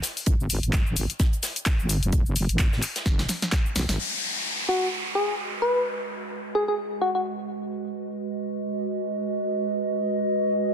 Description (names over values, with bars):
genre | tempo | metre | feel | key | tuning
bass house | 129 BPM | 4/4 | swing 57% on 16ths | G# minor | A4 = 440 Hz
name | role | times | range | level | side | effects
house drum kit | drums | 0.0-4.0 s | handclaps, hi-hat, shaker, snare drum | -28 LUFS | left 2 dB | none
tight metal drum kit | drums | 0.0-4.0 s | hi-hat, snare drum | -36 LUFS | right 3 dB | high-pass filter on hats, high-pass filter on snare, high-pass filter on room
wobble bass | bass | 0.3-4.0 s | F#1 to B1 | -26 LUFS | equal | chorus, tube saturation, sidechain pumping
electronic kick drum | drums | 0.3-3.6 s | none | -22 LUFS | equal | none
downlifter | sound effects | 4.0-7.7 s | none | -30 LUFS | left 1 dB | none
warbly tape-like pad | texture | 5.1-10.7 s | G#3 to D#5 | -28 LUFS | right 2 dB | chorus, built-in reverb, sidechain pumping
soft struck synth lead | melody | 4.7-7.2 s | F#4 to B4 | -25 LUFS | left 1 dB | chorus, tape echo
room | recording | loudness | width
light reverb, digital ambience | dense, heavily limited modern master | -23 LUFS | side -7 dB against mid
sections
0.0-4.0 A section; 4.0-10.7 B section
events
drum fill 3.1-4.0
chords
0.0 N.C.; 4.0 G#m